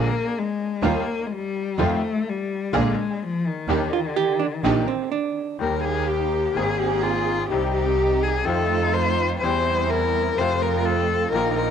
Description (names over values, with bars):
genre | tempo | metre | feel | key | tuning
tango | 126 BPM | 4/4 | rubato | Eb major | A4 = 440 Hz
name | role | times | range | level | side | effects
rich cello | second line | 0.0-11.7 s | Eb3 to C5 | -24 LUFS | left 5 dB | plate reverb
bright grand piano | accompaniment | 0.0-11.7 s | Ab1 to Ab4 | -28 LUFS | left 7 dB | plate reverb
warm studio string section | stabs | 0.0-11.7 s | G3 to Ab4 | -28 LUFS | right 12 dB | analog delay
clear double bass | bass | 0.0-11.7 s | Ab1 to F2 | -26 LUFS | right 4 dB | none
hollow-body jazz guitar | second line | 3.9-5.6 s | C4 to G4 | -23 LUFS | right 9 dB | plate reverb
room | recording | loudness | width
moderate small room reverb, RT60 0.5 s | home recording on cassette | -20 LUFS | side -8 dB against mid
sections
0.0-5.6 A section; 5.6-11.7 A section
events
cello solo 0.0-5.6, 5.6-11.7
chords
0.0 Bb7(no3); 0.8 Ebadd9; 1.8 F7; 2.7 Bb7; 3.7 Ebmaj7; 5.6 Eb; 6.6 Abadd9; 7.5 Cm; 8.5 F7; 9.4 C/E; 10.4 F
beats
0.35 0.82 1.30 | 1.78 2.25 2.73 3.21 | 3.68 4.16 4.64 5.12 | 5.60 6.08 6.56 7.04 | 7.51 7.99 8.47 8.94 | 9.42 9.90 10.38 10.85 | 11.33